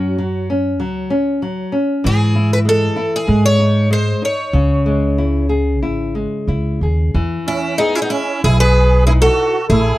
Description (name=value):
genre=fado-style ballad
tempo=95 BPM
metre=4/4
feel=rubato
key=C# minor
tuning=A4 = 444 Hz
part: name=picked twelve-string acoustic guitar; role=melody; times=0.0-10.0 s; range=D#4 to C#5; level=-18 LUFS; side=equal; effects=none
part: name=nylon-string guitar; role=accompaniment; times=0.0-10.0 s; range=B2 to D#5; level=-20 LUFS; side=left 1 dB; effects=none
part: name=upright bass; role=bass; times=0.0-9.9 s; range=G#1 to G#2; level=-16 LUFS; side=equal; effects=none
part: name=musette accordion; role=second line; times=7.5-10.0 s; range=B3 to G#4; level=-22 LUFS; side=right 5 dB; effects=none
room=little or no reverb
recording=dry, close 1970s-style studio recording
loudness=-14 LUFS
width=side -16 dB against mid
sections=0.0-7.1 A section; 7.1-10.0 B section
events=none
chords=0.0 F#5; 2.0 Eadd11/G#; 3.3 G#5; 4.5 C#m; 7.1 Emaj7